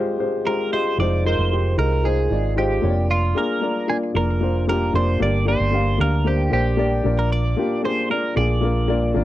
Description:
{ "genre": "piano-driven pop", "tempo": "114 BPM", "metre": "4/4", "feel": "straight", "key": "unclear", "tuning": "A4 = 439 Hz", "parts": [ { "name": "warm upright piano", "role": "accompaniment", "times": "0.0-9.2 s", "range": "Ab1 to F5", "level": "-22 LUFS", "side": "left 2 dB", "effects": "none" }, { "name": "twelve-string electric guitar", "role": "melody", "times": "0.5-9.1 s", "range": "F4 to D5", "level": "-25 LUFS", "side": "right 3 dB", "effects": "phaser, slapback echo" }, { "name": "hollow-body short-scale fingered electric bass", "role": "bass", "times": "1.0-9.2 s", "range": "F1 to D2", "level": "-21 LUFS", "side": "right 1 dB", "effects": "none" } ], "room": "light reverb", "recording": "dry, close 1970s-style studio recording", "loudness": "-18 LUFS", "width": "side -14 dB against mid", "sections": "1.0-9.2 A section", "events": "none", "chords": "0.0 Fmadd9/Ab; 1.0 Fm7; 2.8 Bb/F; 5.2 Gm; 7.1 Bb", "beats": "0.46 | 0.99 1.52 2.04 2.57 | 3.10 3.62 4.15 4.68 | 5.21 5.73 6.26 6.79 | 7.32 7.84 8.37 8.90" }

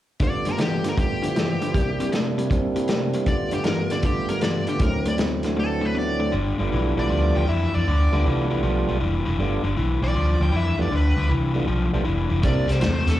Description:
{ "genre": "electric blues shuffle", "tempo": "157 BPM", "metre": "4/4", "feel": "swing 66% on 8ths", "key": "G mixolydian", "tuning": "A4 = 440 Hz", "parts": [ { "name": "smooth overdriven lead guitar", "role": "melody", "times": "0.2-13.2 s", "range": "G4 to G5", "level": "-29 LUFS", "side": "left 1 dB", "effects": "slapback echo" }, { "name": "tonewheel organ", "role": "accompaniment", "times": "0.2-12.7 s", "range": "D2 to F#4", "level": "-27 LUFS", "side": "right 4 dB", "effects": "slow rotary speaker, slapback echo" }, { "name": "overdriven electric guitar", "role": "riff", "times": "0.2-13.2 s", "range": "G2 to B3", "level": "-26 LUFS", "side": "left 4 dB", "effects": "none" }, { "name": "vintage drum kit", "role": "drums", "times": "0.2-5.5, 12.4-13.1 s", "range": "hi-hat, kick drum, snare drum", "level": "-25 LUFS", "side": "equal", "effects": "none" }, { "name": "vintage muted fingered electric bass", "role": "bass", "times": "6.3-13.2 s", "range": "F1 to F2", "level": "-22 LUFS", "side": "equal", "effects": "none" } ], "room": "small room ambience", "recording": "live gig heard through the venue's PA, club reverb", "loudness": "-20 LUFS", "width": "side -13 dB against mid", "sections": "0.2-6.3 A section; 6.3-13.2 B section", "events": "none", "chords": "0.2 G7; 1.7 C7; 3.3 G7; 4.8 D7; 6.3 G9; 12.4 C9", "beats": "| 0.20 0.59 0.97 1.36 | 1.74 2.12 2.51 2.89 | 3.27 3.66 4.04 4.42 | 4.80 5.19 5.57 5.95 | 6.33 6.72 7.10 7.48 | 7.86 8.24 8.62 9.01 | 9.39 9.77 10.15 10.53 | 10.91 11.29 11.68 12.06 | 12.44 12.82" }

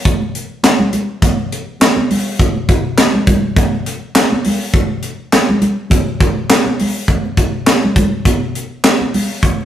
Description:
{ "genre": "funk", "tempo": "102 BPM", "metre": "4/4", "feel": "swing 56% on 16ths", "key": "none", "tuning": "none", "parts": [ { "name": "congas", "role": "percussion", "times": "0.0-9.7 s", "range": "none", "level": "-18 LUFS", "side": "right 1 dB", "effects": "none" }, { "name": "crisp fusion drum kit", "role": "drums", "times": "0.1-9.6 s", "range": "handclaps, hi-hat, kick drum, snare drum", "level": "-13 LUFS", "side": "equal", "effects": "none" } ], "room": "moderate stone room reverb, RT60 1.0 s", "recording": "rough rehearsal-room recording, warm saturation", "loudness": "-12 LUFS", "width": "side -10 dB against mid", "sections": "0.0-7.1 A section; 7.1-9.7 B section", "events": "none", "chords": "none", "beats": "| 0.05 0.64 1.22 1.81 | 2.40 2.98 3.57 4.15 | 4.74 5.32 5.91 6.50 | 7.08 7.67 8.26 8.84 | 9.43" }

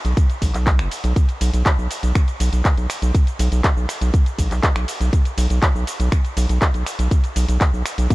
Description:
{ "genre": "progressive house", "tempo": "121 BPM", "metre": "4/4", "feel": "straight", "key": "unclear", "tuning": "A4 = 440 Hz", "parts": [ { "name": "round analog bass", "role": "bass", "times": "0.0-8.1 s", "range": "F#1 to B1", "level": "-18 LUFS", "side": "equal", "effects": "sidechain pumping" }, { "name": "house drum kit", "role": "drums", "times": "0.0-8.1 s", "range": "finger snaps, handclaps, hi-hat, ride cymbal, shaker, toms", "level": "-24 LUFS", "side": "equal", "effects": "none" }, { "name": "electronic kick drum", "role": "drums", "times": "0.2-8.1 s", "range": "none", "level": "-17 LUFS", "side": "equal", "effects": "none" } ], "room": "little or no reverb", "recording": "none", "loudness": "-16 LUFS", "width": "side -20 dB against mid", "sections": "0.0-8.1 A section", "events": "none", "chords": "none", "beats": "0.17 0.67 | 1.16 1.66 2.15 2.65 | 3.15 3.64 4.14 4.63 | 5.13 5.62 6.12 6.62 | 7.11 7.61 8.10" }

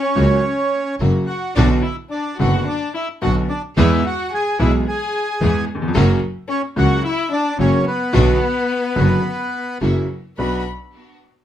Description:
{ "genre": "tango", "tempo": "109 BPM", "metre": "4/4", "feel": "rubato", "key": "B harmonic minor", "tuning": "A4 = 440 Hz", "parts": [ { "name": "bandoneon", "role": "melody", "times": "0.0-10.6 s", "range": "B3 to G#5", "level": "-22 LUFS", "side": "right 2 dB", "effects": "none" }, { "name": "dark violin", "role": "second line", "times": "0.0-10.6 s", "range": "B3 to B5", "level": "-25 LUFS", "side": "left 5 dB", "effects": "none" }, { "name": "bright upright piano", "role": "accompaniment", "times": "0.2-10.6 s", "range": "F#1 to G#4", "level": "-19 LUFS", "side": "equal", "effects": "none" }, { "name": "bright symphonic string section", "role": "stabs", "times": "0.2-10.6 s", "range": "A#3 to G#4", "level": "-29 LUFS", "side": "right 1 dB", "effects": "tape echo" }, { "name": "clear double bass", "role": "bass", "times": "0.2-10.6 s", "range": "F#1 to E2", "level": "-18 LUFS", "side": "right 1 dB", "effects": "none" } ], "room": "moderate studio ambience, RT60 0.5 s", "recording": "none", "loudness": "-16 LUFS", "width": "side -11 dB against mid", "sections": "0.0-10.4 A section; 10.4-11.4 B section", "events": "none", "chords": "0.0 F#; 1.6 Bm; 3.8 E; 6.0 F#; 8.1 Bm; 9.8 F#7; 10.4 Bm", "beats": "0.43 1.00 | 1.56 2.12 2.67 3.23 | 3.77 4.32 4.86 5.40 | 5.95 6.50 7.04 7.59 | 8.14 8.69 9.24 9.81 | 10.38" }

